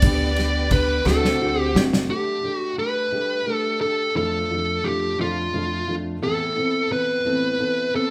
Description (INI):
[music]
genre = six-eight pop ballad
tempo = 58 BPM (dotted quarters)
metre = 6/8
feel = straight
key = G major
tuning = A4 = 441 Hz
[part]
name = fuzz lead guitar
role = melody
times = 0.0-8.1 s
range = F4 to D5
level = -25 LUFS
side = equal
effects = distortion
[part]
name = felt-muted upright piano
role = accompaniment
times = 0.0-8.1 s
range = F2 to A4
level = -30 LUFS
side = equal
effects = none
[part]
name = clear studio string section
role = sustained chords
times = 0.0-2.1 s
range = B4 to D6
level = -34 LUFS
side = equal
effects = none
[part]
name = fingerpicked steel-string acoustic guitar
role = arpeggios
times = 0.0-8.1 s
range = A2 to G4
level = -33 LUFS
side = equal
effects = none
[part]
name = upright bass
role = bass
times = 0.0-2.1 s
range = F#1 to D2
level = -27 LUFS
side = equal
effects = none
[part]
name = natural country drum kit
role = drums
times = 0.0-2.1 s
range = kick drum, ride cymbal, snare drum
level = -24 LUFS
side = equal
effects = none
[sound]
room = moderate large studio reverb, RT60 1.2 s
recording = band playing live in one room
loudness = -22 LUFS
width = mono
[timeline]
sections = 0.0-2.1 A section; 2.1-8.1 B section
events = drum fill 1.1-2.1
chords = 0.0 G/D; 1.1 D7; 2.1 Gsus2; 4.2 Dm/F; 6.2 Amadd9